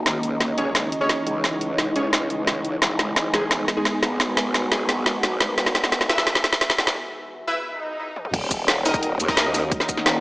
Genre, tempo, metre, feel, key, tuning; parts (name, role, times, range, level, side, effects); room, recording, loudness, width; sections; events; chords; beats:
dark technical drum and bass; 174 BPM; 4/4; straight; Eb phrygian; A4 = 440 Hz
swarming drone; sustained chords; 0.0-10.2 s; Db3 to Cb5; -31 LUFS; equal; built-in reverb, wide subtle chorus, sidechain pumping
growl bass; bass; 0.0-10.2 s; Eb1 to Eb2; -27 LUFS; equal; chorus, overdrive, sidechain pumping
deep dark ambient pad; texture; 0.0-10.2 s; Fb3 to Bb5; -30 LUFS; right 1 dB; chorus, built-in reverb, sidechain pumping
drum and bass drum kit; drums; 0.1-10.1 s; crash cymbal, hi-hat, shaker, snare drum, toms; -21 LUFS; equal; overdrive
orchestra-hit-like synth stab; stabs; 0.6-10.2 s; Ab3 to E5; -27 LUFS; equal; built-in reverb, tape echo
swell; sound effects; 7.7-8.3 s; -34 LUFS; equal
electronic kick drum; drums; 8.3-10.0 s; -27 LUFS; equal; overdrive
wet plate reverb, RT60 2.0 s; dreamy mix soaked in reverb, high-pass filter, small speaker sound; -20 LUFS; side -21 dB against mid
0.0-8.3 A section; 8.3-10.2 B section
build-up 0.0-8.3; drum fill 0.0-7.0, 8.2; filter sweep on synth stab 0.0-8.3; break 7.0-8.3; swell 7.7-8.3; drop 8.3-10.2
0.1 Dbmadd9; 2.8 Abm7; 5.6 Eadd9; 8.3 Ebm7
| 0.06 0.41 0.75 1.09 | 1.44 1.78 2.13 2.47 | 2.82 3.16 3.51 3.85 | 4.20 4.54 4.89 5.23 | 5.58 5.92 6.27 6.61 | 6.96 7.30 7.65 7.99 | 8.34 8.68 9.03 9.37 | 9.72 10.06